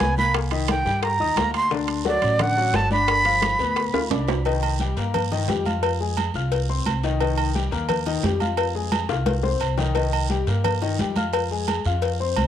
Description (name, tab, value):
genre	latin, salsa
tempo	174 BPM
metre	4/4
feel	straight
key	C minor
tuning	A4 = 441 Hz
part	breathy bright jazz flute	melody	0.0-4.1 s	D5 to C6	-22 LUFS	right 2 dB	analog delay
part	warm grand piano	accompaniment	0.0-12.5 s	D3 to F6	-27 LUFS	left 8 dB	none
part	upright bass	bass	0.0-12.5 s	G1 to G2	-25 LUFS	right 1 dB	none
part	bongos and cowbell	percussion	0.0-12.5 s	none	-29 LUFS	left 10 dB	none
part	congas	percussion	0.0-12.5 s	none	-29 LUFS	right 1 dB	none
part	guiro	percussion	0.0-12.5 s	none	-36 LUFS	right 14 dB	none
part	timbales and agogo bells	percussion	0.0-12.5 s	none	-29 LUFS	right 12 dB	none
room	light reverb, studio reverb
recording	home recording on cassette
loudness	-20 LUFS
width	side -10 dB against mid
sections	0.0-4.5 A section; 4.5-12.5 B section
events	drum fill 3.9-4.5, 9.1-10.0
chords	0.3 Cm7; 1.7 D; 3.1 G7; 4.5 Cm7; 5.8 Fm; 7.2 Cm7; 8.6 Fm; 10.0 Cm7; 11.3 Fm